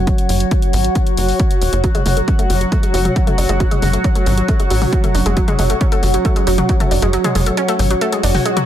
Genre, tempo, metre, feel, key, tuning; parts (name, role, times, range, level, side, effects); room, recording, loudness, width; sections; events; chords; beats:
driving peak-time techno; 136 BPM; 4/4; straight; A4 = 440 Hz
tight sequencer bass; bass; 0.0-8.4 s; E1 to A1; -17 LUFS; equal; sidechain pumping
analog drone; drone; 0.0-8.7 s; F#3 to F#4; -22 LUFS; left 1 dB; chorus, sidechain pumping
granular cloud pad; texture; 0.0-8.7 s; F#4 to F#5; -22 LUFS; right 1 dB; built-in reverb, sidechain pumping
electronic kick drum; drums; 0.1-6.8 s; -16 LUFS; equal; overdrive
punchy analog drum machine; drums; 0.1-8.7 s; hi-hat, toms; -23 LUFS; left 1 dB; overdrive, sidechain pumping on hats, sidechain pumping on toms
analog pluck; riff; 1.8-8.6 s; F#3 to F#4; -21 LUFS; equal; chorus, cassette tape, sidechain pumping, tape echo
swell; sound effects; 8.2-8.7 s; -23 LUFS; equal
light reverb, digital ambience; -13 LUFS; side -11 dB against mid
0.0-8.7 A section
kick drops out 7.1-8.7; swell 8.2-8.7
0.0 F#5
| 0.07 0.51 0.95 1.40 | 1.84 2.28 2.72 3.16 | 3.60 4.04 4.48 4.92 | 5.37 5.81 6.25 6.69 | 7.13 7.57 8.01 8.46